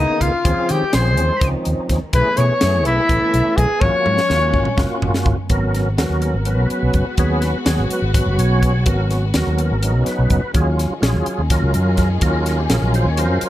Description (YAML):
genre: electric jazz fusion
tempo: 250 BPM (eighths)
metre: 7/8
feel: straight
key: G# minor from 5.5 s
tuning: A4 = 440 Hz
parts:
  - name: breathy trumpet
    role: melody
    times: 0.0-5.0 s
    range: D#4 to C#5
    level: -18 LUFS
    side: left 2 dB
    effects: slapback echo
  - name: biting overdriven guitar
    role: second line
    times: 0.0-5.0 s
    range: D#5 to C#6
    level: -27 LUFS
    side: right 3 dB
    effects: none
  - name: percussive tonewheel organ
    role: accompaniment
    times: 0.0-13.5 s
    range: D#3 to C#5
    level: -22 LUFS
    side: right 1 dB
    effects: slow rotary speaker, overdrive, chorus vibrato
  - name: warm studio string section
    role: sustained chords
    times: 0.0-13.5 s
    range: C#3 to C#5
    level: -28 LUFS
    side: left 2 dB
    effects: none
  - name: fretless electric bass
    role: bass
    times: 0.0-13.5 s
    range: F#1 to D#3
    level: -18 LUFS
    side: equal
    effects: none
  - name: crisp fusion drum kit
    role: drums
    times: 0.2-13.5 s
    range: hi-hat, kick drum, snare drum, toms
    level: -20 LUFS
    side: equal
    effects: none
room: light reverb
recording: none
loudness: -15 LUFS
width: side -14 dB against mid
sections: 0.0-5.5 A section; 5.5-13.5 B section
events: drum fill 3.8-5.5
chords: 0.5 D#13sus4; 2.1 B13sus4; 3.8 G#13sus4; 5.5 G#m11; 10.5 D#m11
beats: 0.22 | 0.46 0.70 0.94 1.18 1.42 1.66 1.90 | 2.14 2.38 2.62 2.86 3.10 3.34 3.58 | 3.82 4.06 4.30 4.54 4.78 5.02 5.26 | 5.50 5.75 5.99 6.23 6.47 6.71 6.95 | 7.19 7.43 7.67 7.91 8.15 8.39 8.63 | 8.87 9.11 9.35 9.59 9.83 10.07 10.31 | 10.55 10.79 11.03 11.27 11.51 11.75 11.99 | 12.23 12.47 12.71 12.95 13.18 13.42